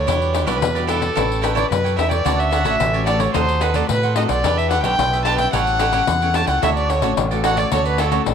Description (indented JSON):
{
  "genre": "samba and choro",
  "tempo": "110 BPM",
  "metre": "4/4",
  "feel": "straight",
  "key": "D major",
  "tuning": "A4 = 440 Hz",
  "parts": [
    { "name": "warm violin", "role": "melody", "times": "0.0-8.3 s", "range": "A4 to A5", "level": "-21 LUFS", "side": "equal", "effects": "none" },
    { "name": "cavaquinho", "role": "accompaniment", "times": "0.0-8.2 s", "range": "D4 to G5", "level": "-23 LUFS", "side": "right 13 dB", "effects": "none" },
    { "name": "nylon-string guitar", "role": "accompaniment", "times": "0.0-8.3 s", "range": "A2 to B4", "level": "-27 LUFS", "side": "left 12 dB", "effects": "none" },
    { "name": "growling fingered electric bass", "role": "bass", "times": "0.0-8.3 s", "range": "A1 to A2", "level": "-22 LUFS", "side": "right 1 dB", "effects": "overdrive" },
    { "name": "pandeiro", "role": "percussion", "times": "0.1-8.3 s", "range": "none", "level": "-24 LUFS", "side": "left 10 dB", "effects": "none" }
  ],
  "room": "moderate plate reverb, RT60 2.2 s",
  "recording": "1960s-style stereo with parts hard left and right",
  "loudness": "-16 LUFS",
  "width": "side -7 dB against mid",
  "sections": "0.0-8.3 A section",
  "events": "none",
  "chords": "0.1 Em9; 1.2 A9; 2.3 Dmaj7; 3.4 D#dim7; 4.4 Em7; 5.5 A7; 6.6 Dmaj7",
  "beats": "| 0.08 0.62 1.17 1.71 | 2.26 2.81 3.35 3.90 | 4.44 4.99 5.54 6.08 | 6.63 7.17 7.72 8.27"
}